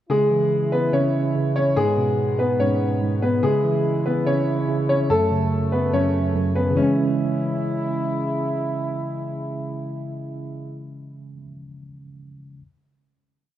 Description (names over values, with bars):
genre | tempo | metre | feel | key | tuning
hip hop, trap | 144 BPM | 4/4 | half-time | C# minor | A4 = 440 Hz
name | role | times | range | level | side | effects
warm concert grand piano | melody | 0.1-8.0 s | G#3 to C#5 | -22 LUFS | equal | low-pass filter, tape echo
tine electric piano | accompaniment | 0.1-12.6 s | F#2 to C#5 | -24 LUFS | equal | auto-pan, low-pass filter
warm brass ensemble | sustained chords | 0.1-10.9 s | F#2 to E4 | -28 LUFS | equal | none
room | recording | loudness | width
moderate lush hall reverb, RT60 2.7 s | rough home demo mix | -19 LUFS | side -12 dB against mid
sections
0.1-6.8 breakdown; 6.8-10.1 final chord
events
none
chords
0.1 C#m; 1.8 G#m; 3.4 C#m; 5.1 F#m; 6.8 C#m